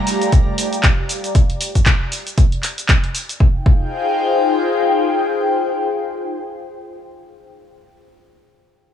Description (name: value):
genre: deep house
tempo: 117 BPM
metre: 4/4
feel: swing 57% on 16ths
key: F dorian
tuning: A4 = 439 Hz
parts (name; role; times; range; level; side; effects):
- airy breathy pad; sustained chords; 0.0-7.1 s; G3 to Bb5; -21 LUFS; left 3 dB; chorus, phaser, sidechain pumping
- ethereal airy pad; texture; 0.0-7.3 s; F4 to G5; -22 LUFS; left 2 dB; ensemble chorus, built-in reverb, sidechain pumping
- punchy analog drum machine; drums; 0.1-3.4 s; handclaps, hi-hat, shaker; -20 LUFS; equal; none
- electronic kick drum; drums; 0.3-3.8 s; none; -13 LUFS; equal; none
room: light reverb, digital ambience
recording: dry, gritty hardware recording, cassette tape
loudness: -15 LUFS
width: side -9 dB against mid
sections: 0.0-3.4 A section; 3.4-7.5 B section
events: drop 0.0-3.4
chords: 0.0 Gm9; 3.4 Fm9